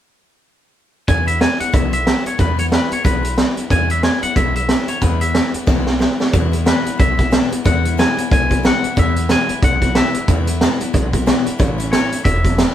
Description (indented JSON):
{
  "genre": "rockabilly",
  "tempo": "183 BPM",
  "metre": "4/4",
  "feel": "swing 59% on 8ths",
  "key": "E major",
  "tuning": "A4 = 439 Hz",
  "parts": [
    { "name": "twangy electric guitar", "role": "melody", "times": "1.1-12.7 s", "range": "B4 to G#5", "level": "-21 LUFS", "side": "left 2 dB", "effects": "none" },
    { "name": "picked steel-string acoustic guitar", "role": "accompaniment", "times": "1.1-12.7 s", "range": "E2 to E4", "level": "-24 LUFS", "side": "left 6 dB", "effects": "none" },
    { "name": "upright bass", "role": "bass", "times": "1.1-12.6 s", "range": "E1 to E2", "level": "-19 LUFS", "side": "equal", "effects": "none" },
    { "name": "vintage drum kit", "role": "drums", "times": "1.1-12.7 s", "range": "hi-hat, kick drum, snare drum", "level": "-16 LUFS", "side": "right 1 dB", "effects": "none" }
  ],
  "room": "light reverb",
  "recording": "band playing live in one room",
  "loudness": "-14 LUFS",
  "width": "side -11 dB against mid",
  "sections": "1.1-6.3 A section; 6.3-12.7 B section",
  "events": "drum fill 5.7-6.3",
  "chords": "1.1 E; 11.6 A",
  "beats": "| 1.08 1.41 1.74 2.06 | 2.39 2.72 3.05 3.38 | 3.71 4.03 4.36 4.69 | 5.02 5.35 5.68 6.01 | 6.34 6.67 7.00 7.33 | 7.65 7.98 8.31 8.64 | 8.97 9.30 9.63 9.96 | 10.28 10.61 10.94 11.27 | 11.60 11.93 12.25 12.58"
}